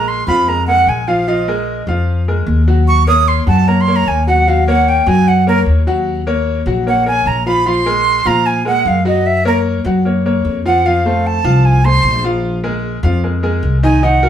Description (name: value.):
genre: jazz.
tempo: 151 BPM.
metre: 4/4.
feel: straight.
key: Bb minor.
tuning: A4 = 441 Hz.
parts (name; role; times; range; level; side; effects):
breathy bright jazz flute; melody; 0.0-14.3 s; Bb4 to Eb6; -14 LUFS; right 3 dB; none.
bright grand piano; accompaniment; 0.0-14.3 s; Eb3 to Gb5; -18 LUFS; left 2 dB; none.
upright bass; bass; 0.0-14.3 s; Bb1 to Bb2; -15 LUFS; left 1 dB; none.
room: wet studio reverb, RT60 0.6 s.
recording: band playing live in one room.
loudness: -11 LUFS.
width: side -9 dB against mid.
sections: 0.0-14.3 A section.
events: flute solo 0.0-14.3.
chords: 0.0 Bb5; 2.9 Ebm7; 7.7 Bb5; 9.3 Gb; 10.8 F; 12.4 Bb5.